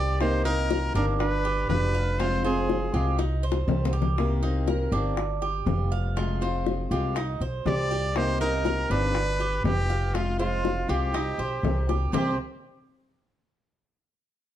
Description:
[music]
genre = latin, Cuban son and guajira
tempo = 121 BPM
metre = 4/4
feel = straight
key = C minor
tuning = A4 = 444 Hz
[part]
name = brilliant trumpet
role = melody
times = 0.0-3.2, 7.7-12.4 s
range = F4 to D5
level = -29 LUFS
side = equal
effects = slapback echo
[part]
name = nylon-string guitar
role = second line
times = 0.0-3.1, 7.7-12.4 s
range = Ab3 to G4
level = -34 LUFS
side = right 5 dB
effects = none
[part]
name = picked old ladder-braced acoustic guitar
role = accompaniment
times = 0.0-12.3 s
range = C3 to G4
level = -32 LUFS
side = left 5 dB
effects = none
[part]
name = Cuban tres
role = arpeggios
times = 0.0-12.4 s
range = C4 to F5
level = -33 LUFS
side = right 7 dB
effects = none
[part]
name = upright bass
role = bass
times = 0.0-12.4 s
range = F1 to C2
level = -27 LUFS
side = equal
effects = none
[part]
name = bongos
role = percussion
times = 0.2-12.3 s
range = none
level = -31 LUFS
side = left 6 dB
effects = none
[sound]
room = light reverb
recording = dark, warm production, lossy compression artefacts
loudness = -23 LUFS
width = side -11 dB against mid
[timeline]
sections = 0.0-12.1 A section; 12.1-14.1 B section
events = drum fill 3.2-4.2, 11.9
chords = 0.2 Cm7; 1.2 G7; 2.2 Fm; 3.2 Cm; 4.2 Cm7; 5.2 G7; 6.2 Fm; 7.2 Cm; 8.2 Cm7; 9.2 G7; 10.1 Fm; 11.1 Cm; 12.1 C5

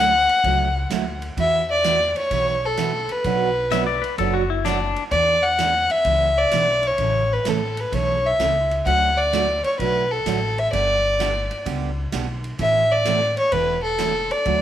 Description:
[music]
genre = country, western swing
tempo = 128 BPM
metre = 4/4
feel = swing 68% on 8ths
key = unclear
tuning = A4 = 438 Hz
[part]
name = dark fiddle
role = melody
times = 0.0-14.6 s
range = A4 to F#5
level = -19 LUFS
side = left 1 dB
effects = none
[part]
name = picked steel-string acoustic guitar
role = accompaniment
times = 0.0-14.6 s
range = B2 to C#5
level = -27 LUFS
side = right 10 dB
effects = none
[part]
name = upright bass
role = bass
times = 0.0-14.6 s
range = E1 to E2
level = -27 LUFS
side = left 1 dB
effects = none
[part]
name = swinging big-band drum kit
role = drums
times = 0.3-14.6 s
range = hi-hat, kick drum, ride cymbal, snare drum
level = -33 LUFS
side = right 4 dB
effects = none
[part]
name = clean lap steel guitar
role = second line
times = 3.7-5.0 s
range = D4 to E5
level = -24 LUFS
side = left 10 dB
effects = none
[sound]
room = light reverb, small room reverb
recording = 1960s-style stereo with parts hard left and right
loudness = -18 LUFS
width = side -11 dB against mid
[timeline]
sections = 0.0-14.6 A section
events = none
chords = 0.0 Dadd9; 1.4 Esus2; 3.2 Bmadd9; 5.1 E7; 7.0 A; 8.9 D; 10.7 G; 12.6 Aadd9

